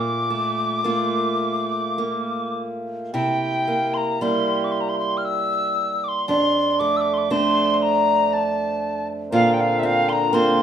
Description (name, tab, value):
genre	celtic folk, Celtic slow air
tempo	49-60 BPM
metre	3/4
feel	rubato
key	C mixolydian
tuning	A4 = 438 Hz
part	mellow tin whistle	melody	0.0-10.6 s	E5 to F6	-22 LUFS	left 1 dB	none
part	fingerpicked steel-string acoustic guitar	accompaniment	0.0-10.6 s	F2 to F4	-22 LUFS	right 2 dB	none
part	pedal harmonium	sustained chords	9.3-10.6 s	D3 to Bb4	-23 LUFS	left 2 dB	none
room	moderate studio reverb, RT60 0.6 s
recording	rough home demo mix, studio reverb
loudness	-19 LUFS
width	side -9 dB against mid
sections	0.0-3.1 A section; 3.1-10.6 B section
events	none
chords	0.0 Bbmaj7; 3.1 C7; 6.3 F6; 9.3 Bbadd9